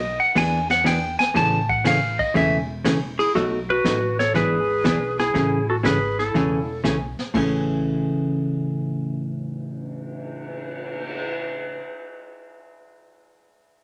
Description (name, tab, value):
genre	country, western swing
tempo	120 BPM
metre	4/4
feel	swing 68% on 8ths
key	A major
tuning	A4 = 439 Hz
part	clean lap steel guitar	melody	0.0-6.8 s	G#4 to A5	-24 LUFS	equal	none
part	upright bass	bass	0.0-11.7 s	E1 to E2	-33 LUFS	equal	none
part	hollow-body jazz guitar	accompaniment	0.4-11.8 s	A2 to G#4	-26 LUFS	equal	none
part	vintage brush drum kit	drums	0.4-11.2 s	brushed snare drum, crash cymbal, cymbal swell, hi-hat, kick drum, ride cymbal, snare drum	-33 LUFS	equal	none
part	warm clarinet	second line	3.2-6.8 s	E4 to A4	-28 LUFS	equal	none
room	wet studio reverb, RT60 0.6 s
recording	none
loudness	-22 LUFS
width	mono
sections	0.0-3.3 A section; 3.3-7.3 B section; 7.3-11.3 C section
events	electric slide guitar solo 0.0-3.3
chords	0.4 E7; 1.4 Amaj7; 3.3 B7; 4.3 E7; 5.3 Amaj7